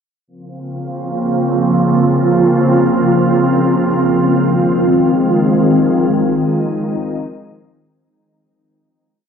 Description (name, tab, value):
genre	hip hop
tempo	free time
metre	none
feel	none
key	Bb minor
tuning	A4 = 441 Hz
part	glassy FM pad	solo	0.7-7.9 s	Db3 to F4	-12 LUFS	equal	ensemble chorus, built-in reverb, low-pass filter, tape echo
room	wet huge ambient reverb, RT60 6.6 s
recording	dreamy mix soaked in reverb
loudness	-12 LUFS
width	side -7 dB against mid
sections	0.3-8.0 breakdown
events	filter sweep on ambient pad 0.3-8.0; fade-out 6.0-8.0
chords	0.3 Bbmadd9; 4.1 Fm7